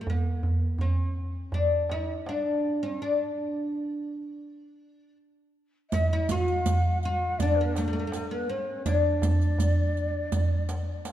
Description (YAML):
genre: Arabic maqam ensemble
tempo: 82 BPM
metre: 4/4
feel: straight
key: D maqam huzam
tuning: A4 = 440 Hz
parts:
  - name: oud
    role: melody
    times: 0.0-11.1 s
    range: A3+40c to F#4-50c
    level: -30 LUFS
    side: left 2 dB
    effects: none
  - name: darbuka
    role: percussion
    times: 0.1-11.1 s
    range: none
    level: -26 LUFS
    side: right 1 dB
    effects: none
  - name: mellow ney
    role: second line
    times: 5.9-11.1 s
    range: A4+36c to F5+50c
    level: -32 LUFS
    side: left 1 dB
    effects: none
  - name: riq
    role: percussion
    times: 5.9-11.1 s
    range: none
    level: -36 LUFS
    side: right 5 dB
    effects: none
room: wet concert hall reverb, RT60 2.4 s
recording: dark, warm production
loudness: -25 LUFS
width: side -12 dB against mid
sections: 0.0-5.9 A section; 5.9-11.1 B section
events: break 3.0-5.9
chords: none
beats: | 0.07 0.80 1.53 2.26 | 3.00 3.73 4.46 5.20 | 5.93 6.66 7.39 8.12 | 8.86 9.59 10.32 11.05